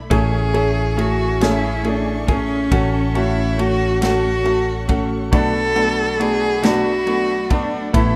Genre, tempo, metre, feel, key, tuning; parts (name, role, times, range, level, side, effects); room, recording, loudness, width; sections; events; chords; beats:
six-eight pop ballad; 46 BPM (dotted quarters); 6/8; straight; A4 = 445 Hz
warm studio string section; sustained chords; 0.0-8.2 s; A3 to C#6; -34 LUFS; equal
fretless electric bass; bass; 0.0-8.2 s; A1 to B1; -25 LUFS; equal; analog chorus
warm cello; melody; 0.1-8.2 s; C#4 to A4; -23 LUFS; equal
felt-muted upright piano; accompaniment; 0.1-8.2 s; A3 to G#4; -25 LUFS; equal
direct-recorded clean electric guitar; arpeggios; 0.1-8.2 s; B2 to A4; -28 LUFS; equal; spring reverb, tape echo
natural country drum kit; drums; 0.1-8.1 s; kick drum, ride cymbal, snare drum; -23 LUFS; equal
moderate studio reverb, RT60 0.5 s; rough home demo mix; -18 LUFS; mono
0.0-8.2 A section
0.1 Amaj7; 2.7 F#m/A; 5.3 Bm7
| 0.11 1.41 | 2.72 4.02 | 5.33 6.63 | 7.94